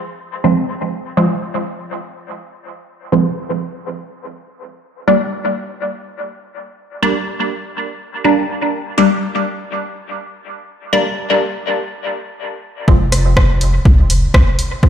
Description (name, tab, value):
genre	dub techno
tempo	123 BPM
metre	4/4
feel	straight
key	F dorian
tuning	A4 = 441 Hz
part	filtered dub chord stab	stabs	0.4-14.9 s	F3 to D4	-17 LUFS	equal	phaser, sidechain pumping, dub echo
part	warm sub bass	bass	12.9-14.4 s	F1 to C2	-14 LUFS	equal	sidechain pumping
part	electronic kick drum	drums	12.9-14.9 s	none	-12 LUFS	equal	overdrive, small room ambience
part	deep house drum kit	drums	13.1-14.7 s	hi-hat, rim click	-19 LUFS	equal	overdrive, small room ambience, dub echo
room	moderate spring reverb, RT60 2.0 s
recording	played on a big sound system in a bare room, stone room reverb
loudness	-14 LUFS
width	side -9 dB against mid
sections	0.0-12.9 A section; 12.9-14.9 B section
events	none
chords	0.0 Fm; 5.1 Gm; 12.9 Fm